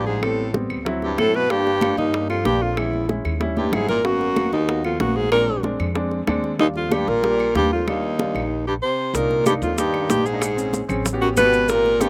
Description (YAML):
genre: Afro-Cuban jazz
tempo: 188 BPM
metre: 4/4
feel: straight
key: Eb major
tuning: A4 = 440 Hz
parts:
  - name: breathy alto saxophone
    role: melody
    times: 0.0-12.1 s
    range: Eb4 to C5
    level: -24 LUFS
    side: equal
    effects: none
  - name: warm baritone saxophone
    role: second line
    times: 0.0-12.1 s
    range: Eb2 to C3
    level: -28 LUFS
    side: equal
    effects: none
  - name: warm baby grand piano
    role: accompaniment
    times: 0.0-12.1 s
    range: F3 to Ab4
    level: -29 LUFS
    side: equal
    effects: slapback echo
  - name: upright bass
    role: bass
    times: 0.0-12.1 s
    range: G1 to G2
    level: -31 LUFS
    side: equal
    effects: none
  - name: congas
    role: percussion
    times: 0.1-12.1 s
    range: none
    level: -31 LUFS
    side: equal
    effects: none
  - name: bongos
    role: percussion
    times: 0.2-12.1 s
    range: none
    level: -30 LUFS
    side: equal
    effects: slapback echo
  - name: claves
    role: percussion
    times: 0.2-12.1 s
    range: none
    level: -38 LUFS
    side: equal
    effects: none
  - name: maracas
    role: percussion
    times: 9.1-12.1 s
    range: none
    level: -34 LUFS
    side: equal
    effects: none
room: little or no reverb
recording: recorded outdoors, with no room sound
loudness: -21 LUFS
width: mono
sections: 0.0-9.1 A section; 9.1-12.1 B section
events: drum fill 3.4-4.0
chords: 0.2 Am7; 0.9 D7; 1.5 Gm7; 2.8 Bbm7b5; 3.4 Eb7b9; 4.0 Abm9; 5.3 Bb9; 6.6 Ebmaj9; 9.1 Cm7; 10.4 Bbm9; 11.1 A13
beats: | 0.22 0.54 0.86 1.18 | 1.50 1.82 2.14 2.46 | 2.77 3.09 3.41 3.73 | 4.05 4.37 4.68 5.00 | 5.32 5.64 5.96 6.28 | 6.60 6.91 7.23 7.55 | 7.87 8.19 8.51 8.82 | 9.14 9.46 9.78 10.10 | 10.42 10.73 11.05 11.37 | 11.69 12.01